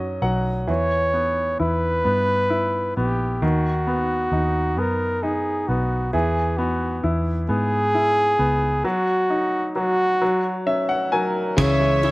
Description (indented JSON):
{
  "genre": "six-eight pop ballad",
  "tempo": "44 BPM (dotted quarters)",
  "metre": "6/8",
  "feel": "straight",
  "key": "unclear",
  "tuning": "A4 = 441 Hz",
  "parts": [
    { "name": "warm flugelhorn", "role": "melody", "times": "0.0-12.1 s", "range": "F#4 to C#5", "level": "-22 LUFS", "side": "equal", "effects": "none" },
    { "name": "clear grand piano", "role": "accompaniment", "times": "0.0-12.1 s", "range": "C#3 to G#5", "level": "-24 LUFS", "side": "left 1 dB", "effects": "slapback echo" },
    { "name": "vintage muted fingered electric bass", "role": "bass", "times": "0.0-12.1 s", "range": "A#1 to G#2", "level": "-24 LUFS", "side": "equal", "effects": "none" },
    { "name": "warm studio violin section", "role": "second line", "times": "11.6-12.1 s", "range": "E5", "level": "-28 LUFS", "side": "equal", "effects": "none" },
    { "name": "twelve-string electric guitar", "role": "arpeggios", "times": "11.6-12.1 s", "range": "E3 to G#4", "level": "-27 LUFS", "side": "right 4 dB", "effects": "none" },
    { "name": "natural country drum kit", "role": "drums", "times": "11.6-12.1 s", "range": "crash cymbal, kick drum, ride cymbal", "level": "-26 LUFS", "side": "equal", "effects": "none" }
  ],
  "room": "little or no reverb",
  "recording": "recorded outdoors, with no room sound",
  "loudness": "-19 LUFS",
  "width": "side -21 dB against mid",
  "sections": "0.0-11.6 A section",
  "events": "grand piano fill 0.0-0.7, 10.2-11.6",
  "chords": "0.0 F#5; 0.7 Em; 3.4 B/D#; 6.1 E; 8.8 D#m/F#; 10.2 F#5; 11.6 C#m",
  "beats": "| 0.69 2.06 | 3.42 4.78 | 6.14 7.49 | 8.84 10.21 | 11.58"
}